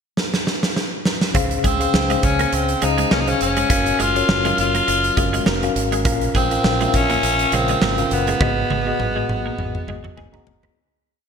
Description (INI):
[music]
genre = 1980s-style pop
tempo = 102 BPM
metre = 4/4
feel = swing 55% on 16ths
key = Db major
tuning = A4 = 440 Hz
[part]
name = big rock drum kit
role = drums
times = 0.2-10.8 s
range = hi-hat, kick drum, snare drum, toms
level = -22 LUFS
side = right 1 dB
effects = none
[part]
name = mellow tine electric piano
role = accompaniment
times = 1.3-10.8 s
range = Ab2 to Bb5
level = -23 LUFS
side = left 3 dB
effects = medium stereo tremolo
[part]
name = fingered electric bass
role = bass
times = 1.3-10.7 s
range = F1 to Db2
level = -25 LUFS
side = equal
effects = none
[part]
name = twelve-string electric guitar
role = riff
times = 1.4-10.7 s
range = Gb3 to Db4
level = -28 LUFS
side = right 6 dB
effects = ensemble chorus
[part]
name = raspy tenor saxophone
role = melody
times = 1.7-10.2 s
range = Cb4 to F4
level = -21 LUFS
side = equal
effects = digital delay
[sound]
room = moderate plate reverb, RT60 2.4 s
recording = bright 1980s-style digital production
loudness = -16 LUFS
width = side -6 dB against mid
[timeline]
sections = 0.0-1.3 pickup bar; 1.3-10.8 verse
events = drum fill 0.2-1.3, 8.4-10.8; fade-out 8.4-10.8; tine electric piano fill 9.9-10.8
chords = 0.0 N.C.; 1.3 Dbmaj7; 3.7 Gbmaj7; 6.1 Bbm; 8.4 Abm7